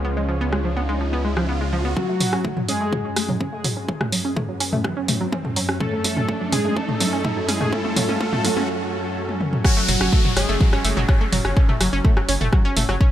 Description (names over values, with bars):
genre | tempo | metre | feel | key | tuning
melodic techno | 125 BPM | 4/4 | straight | F# harmonic minor | A4 = 440 Hz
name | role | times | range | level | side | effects
lush unison pad | sustained chords | 0.0-13.1 s | F#2 to E#4 | -30 LUFS | equal | chorus, sidechain pumping
analog pluck | arpeggios | 0.0-13.1 s | E#3 to C#5 | -26 LUFS | equal | chorus, sidechain pumping, dub echo
round analog bass | bass | 0.0-1.9, 9.9-13.0 s | F#1 to C#2 | -24 LUFS | equal | sidechain pumping
riser and downlifter | sound effects | 0.0-13.1 s | none | -30 LUFS | equal | none
punchy analog drum machine | drums | 0.5-13.0 s | hi-hat, rim click, toms | -24 LUFS | equal | none
fat analog lead | melody | 2.0-11.0 s | F#4 to A4 | -29 LUFS | right 1 dB | lush chorus, sidechain pumping, tape echo
airy dreamy lead | second line | 2.0-11.0 s | F#3 to A3 | -30 LUFS | equal | chorus, sidechain pumping, dub echo
electronic kick drum | drums | 2.0-13.1 s | none | -18 LUFS | equal | high-pass filter on kick, high-pass filter on room
room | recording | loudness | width
light reverb | none | -18 LUFS | side -12 dB against mid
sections
0.0-2.0 A section; 2.0-9.6 B section; 9.6-13.1 C section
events
riser 0.0-2.0, 2.0-8.7; build-up 2.0-9.6; drum fill 2.0-8.7, 9.3-9.6; filter sweep on synth arpeggio sound 2.0-9.6; filter sweep on analog synth pad 2.0-9.6; break 8.7-9.6; drop 9.6-13.1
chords
0.0 C#7; 2.0 F#m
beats
| 0.05 0.53 1.01 1.49 | 1.97 2.45 2.93 3.41 | 3.89 4.37 4.85 5.33 | 5.81 6.29 6.77 7.25 | 7.73 8.21 8.69 9.17 | 9.65 10.13 10.61 11.09 | 11.57 12.05 12.53 13.01